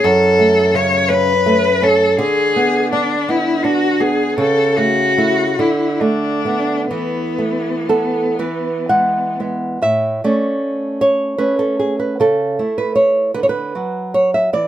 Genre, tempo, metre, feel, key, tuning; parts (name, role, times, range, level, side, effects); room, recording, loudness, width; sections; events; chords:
romantic duo for cello and classical guitar; 38-56 BPM (dotted quarters); 6/8; rubato; A major; A4 = 440 Hz
rich cello; melody; 0.0-9.3 s; B3 to C#5; -16 LUFS; left 2 dB
nylon-string guitar; accompaniment; 0.0-14.7 s; F#2 to F#5; -16 LUFS; right 2 dB
light reverb; -14 LUFS; side -11 dB against mid
0.0-9.8 A section; 9.8-14.7 B section
0.0 F#m; 2.2 Bm/D; 4.4 A/C#; 5.6 Bm7/D; 6.9 Esus4; 8.4 E; 9.8 A; 12.2 A/C#; 13.4 Bm/D